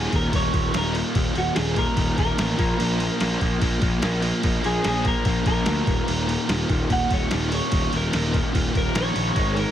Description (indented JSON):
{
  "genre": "indie rock",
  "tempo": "146 BPM",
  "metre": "4/4",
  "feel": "straight",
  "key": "unclear",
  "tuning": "A4 = 440 Hz",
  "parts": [
    { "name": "electric guitar through a small old amp", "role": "melody", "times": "0.0-9.7 s", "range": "Gb4 to Gb5", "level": "-28 LUFS", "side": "equal", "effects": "wide subtle chorus, slapback echo" },
    { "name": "crunchy overdriven guitar", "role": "riff", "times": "0.0-9.7 s", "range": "Eb2 to Bb3", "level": "-26 LUFS", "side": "equal", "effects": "tremolo" },
    { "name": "fuzz picked electric bass", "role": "bass", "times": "0.0-9.6 s", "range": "Eb1 to D2", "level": "-25 LUFS", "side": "equal", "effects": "overdrive" },
    { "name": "boom bap sampler-style drum kit", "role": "drums", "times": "0.1-9.7 s", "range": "crash cymbal, kick drum, snare drum", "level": "-25 LUFS", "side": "equal", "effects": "none" }
  ],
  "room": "light reverb",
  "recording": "none",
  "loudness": "-20 LUFS",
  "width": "side -10 dB against mid",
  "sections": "0.0-9.7 A section",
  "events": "clean electric guitar solo 0.0-9.7",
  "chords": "0.0 Eb5; 2.6 Bb5; 5.9 Eb5",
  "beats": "0.33 0.74 | 1.16 1.57 1.98 2.39 | 2.80 3.21 3.62 4.03 | 4.44 4.85 5.26 5.67 | 6.08 6.49 6.90 7.31 | 7.72 8.13 8.54 8.95 | 9.36"
}